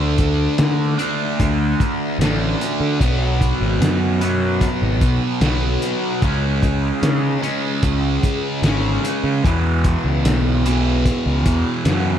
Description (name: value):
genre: psychedelic rock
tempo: 74 BPM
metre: 4/4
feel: straight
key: E mixolydian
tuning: A4 = 440 Hz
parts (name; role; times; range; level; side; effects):
- fuzz guitar; riff; 0.0-12.2 s; E2 to D4; -20 LUFS; right 1 dB; distortion, phaser
- fuzz picked electric bass; bass; 0.0-12.2 s; G#1 to D3; -20 LUFS; equal; overdrive
- cloth-damped thuddy drum kit; drums; 0.2-12.0 s; hi-hat, kick drum, snare drum; -21 LUFS; equal; none
room: moderate lush hall reverb, RT60 2.3 s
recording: dreamy mix soaked in reverb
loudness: -16 LUFS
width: side -9 dB against mid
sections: 0.0-12.2 A section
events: none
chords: 0.0 D5; 3.0 B5; 6.2 C#5; 9.4 Esus2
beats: 0.59 1.40 2.20 | 3.01 3.81 4.62 5.42 | 6.23 7.03 7.84 8.64 | 9.45 10.26 11.06 11.87